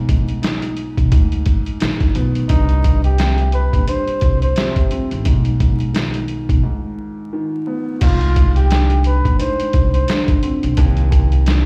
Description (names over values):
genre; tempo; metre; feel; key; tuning
hip hop, boom-bap hip-hop; 87 BPM; 4/4; swing 58% on 16ths; unclear; A4 = 443 Hz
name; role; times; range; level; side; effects
dark upright piano; accompaniment; 0.0-11.7 s; Eb2 to Eb4; -26 LUFS; equal; high-pass filter, low-pass filter, plate reverb
upright bass; bass; 0.0-11.7 s; Ab1 to D2; -19 LUFS; equal; none
trip hop sampler-style drum kit; drums; 0.1-11.7 s; crash cymbal, hi-hat, kick drum, snare drum; -20 LUFS; equal; vintage 12-bit sampler grit
trumpet with bucket mute; melody; 2.5-10.2 s; Eb4 to C5; -25 LUFS; equal; high-pass filter, low-pass filter, plate reverb, tape echo
room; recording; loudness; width
little or no reverb; played on a big sound system in a bare room, large studio reverb, vinyl crackle; -17 LUFS; mono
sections
0.0-8.0 A section; 8.0-11.7 B section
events
break 6.6-8.0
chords
0.0 Abm; 2.5 C5; 5.3 B6; 8.0 Bb9 (rootless); 10.8 Cmadd9